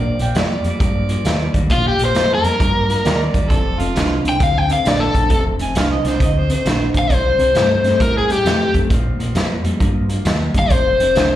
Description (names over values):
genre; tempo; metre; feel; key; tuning
electric blues shuffle; 133 BPM; 4/4; swing 65% on 8ths; F mixolydian; A4 = 440 Hz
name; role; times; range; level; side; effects
overdriven harmonica; second line; 0.0-6.9 s; F4 to Ab5; -25 LUFS; right 4 dB; slapback echo, analog delay
electric guitar through a small old amp; riff; 0.0-11.4 s; F2 to A3; -23 LUFS; left 1 dB; spring reverb, slapback echo
fingered electric bass; bass; 0.0-11.4 s; F1 to A2; -21 LUFS; equal; none
raw garage drum kit; drums; 0.2-11.3 s; hi-hat, kick drum, snare drum; -19 LUFS; equal; none
overdriven electric guitar; melody; 1.7-11.4 s; F4 to G5; -17 LUFS; left 2 dB; slapback echo
room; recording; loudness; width
light reverb, studio reverb; live gig heard through the venue's PA, club reverb; -14 LUFS; side -12 dB against mid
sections
0.0-11.4 A section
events
none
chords
0.0 Bb; 3.5 F; 7.1 C5; 8.9 Bb5; 10.7 F5